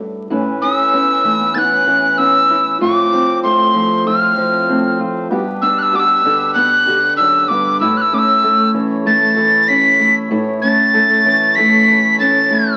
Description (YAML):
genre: acoustic folk duo or small band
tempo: 96 BPM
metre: 4/4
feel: straight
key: unclear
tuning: A4 = 440 Hz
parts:
  - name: fingerpicked old ladder-braced acoustic guitar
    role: accompaniment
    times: 0.0-12.8 s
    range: F#2 to G4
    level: -22 LUFS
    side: equal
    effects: none
  - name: hand-pumped harmonium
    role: sustained chords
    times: 0.3-12.8 s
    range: A2 to C#5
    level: -28 LUFS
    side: equal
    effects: none
  - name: dark upright piano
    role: arpeggios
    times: 0.3-12.8 s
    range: E3 to A4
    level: -24 LUFS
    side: equal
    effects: none
  - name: breathy bright tin whistle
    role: melody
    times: 0.6-12.8 s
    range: C6 to B6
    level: -15 LUFS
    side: equal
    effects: none
room: moderate large studio reverb, RT60 1.2 s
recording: very old 78 rpm record, vinyl crackle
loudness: -14 LUFS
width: mono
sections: 0.3-12.8 A section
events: none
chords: 0.3 Aadd9; 2.8 F/A; 5.3 G; 7.8 A